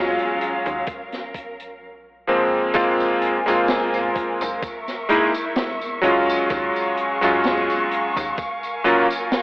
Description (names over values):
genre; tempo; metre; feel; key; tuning
vaporwave; 64 BPM; 4/4; swing 55% on 16ths; Gb lydian; A4 = 442 Hz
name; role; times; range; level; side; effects
bright electric grand piano; accompaniment; 0.0-9.1 s; F3 to F4; -19 LUFS; equal; analog chorus, tape echo
warm studio string section; sustained chords; 0.0-9.4 s; Gb3 to Db6; -26 LUFS; equal; vintage 12-bit sampler grit
slap-like FM bass; bass; 0.0-8.3 s; Eb1 to Gb2; -32 LUFS; equal; none
open jazz drum kit; drums; 0.2-9.4 s; hi-hat, snare drum, tambourine; -29 LUFS; equal; none
electronic kick drum; drums; 0.9-8.6 s; none; -32 LUFS; equal; none
room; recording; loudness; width
wet concert hall reverb, RT60 2.5 s; cassette tape, telephone sound; -18 LUFS; side -24 dB against mid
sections
0.0-2.8 A section; 2.8-9.4 B section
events
none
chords
0.0 Ebm11; 0.9 Ab13sus4; 2.8 Gbmaj9#11; 4.6 Dbm6; 6.5 Ebm11; 8.4 Ab13sus4